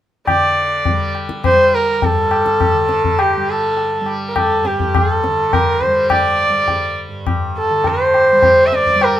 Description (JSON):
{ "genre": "indian classical, Hindustani", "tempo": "103 BPM", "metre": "5/4", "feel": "straight", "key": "G raga kafi", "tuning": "A4 = 440 Hz", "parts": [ { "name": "warm sarangi", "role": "melody", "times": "0.3-9.2 s", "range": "G4 to E5", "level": "-14 LUFS", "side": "equal", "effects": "none" }, { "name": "tanpura", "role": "drone", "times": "0.3-9.2 s", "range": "G2 to G3", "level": "-25 LUFS", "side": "right 3 dB", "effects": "none" }, { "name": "tabla", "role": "percussion", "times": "0.3-9.2 s", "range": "none", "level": "-19 LUFS", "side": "left 3 dB", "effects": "none" } ], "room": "moderate studio reverb, RT60 0.5 s", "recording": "minimal, uncompressed stereo recording", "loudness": "-13 LUFS", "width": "side -12 dB against mid", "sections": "0.3-9.2 A section", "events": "none", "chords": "none" }